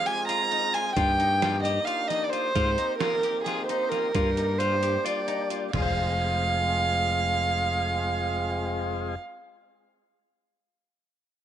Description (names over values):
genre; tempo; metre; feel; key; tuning
progressive instrumental, band music in an uneven meter; 264 BPM (eighths); 7/8; straight; F dorian; A4 = 440 Hz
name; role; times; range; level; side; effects
dark violin; melody; 0.0-9.1 s; Ab4 to Bb5; -26 LUFS; right 2 dB; none
tonewheel organ; accompaniment; 0.0-9.2 s; G3 to Ab4; -33 LUFS; left 1 dB; overdrive, slow rotary speaker
clean electric guitar; arpeggios; 0.1-9.3 s; Eb4 to F5; -35 LUFS; left 13 dB; wide subtle chorus
trip hop sampler-style drum kit; drums; 0.1-5.8 s; crash cymbal, hi-hat, kick drum, snare drum, toms; -33 LUFS; right 2 dB; none
modern bright picked electric bass; bass; 1.0-9.2 s; F1 to Ab2; -29 LUFS; left 1 dB; none
room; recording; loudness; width
little or no reverb; 1960s-style stereo; -24 LUFS; side -10 dB against mid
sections
0.0-5.7 A section; 5.7-8.9 B section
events
kick and snare drop out 4.4-5.7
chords
0.0 Fm; 1.0 Ebmaj9/G; 2.6 Abmaj7; 4.1 Gm; 5.7 Fm